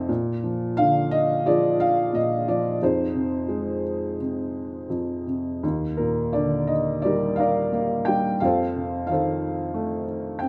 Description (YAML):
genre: classical, lyrical solo piano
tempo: 86 BPM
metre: 4/4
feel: uneven beats, rubato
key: unclear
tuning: A4 = 440 Hz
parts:
  - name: felt-muted upright piano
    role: solo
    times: 0.0-10.5 s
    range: Eb2 to G5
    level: -24 LUFS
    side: equal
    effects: none
room: moderate recital hall reverb, RT60 1.6 s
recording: none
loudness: -24 LUFS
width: mono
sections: 0.0-10.5 A section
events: none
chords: 0.1 Bb7; 2.8 Fm7; 5.6 Ebmaj7; 8.4 F7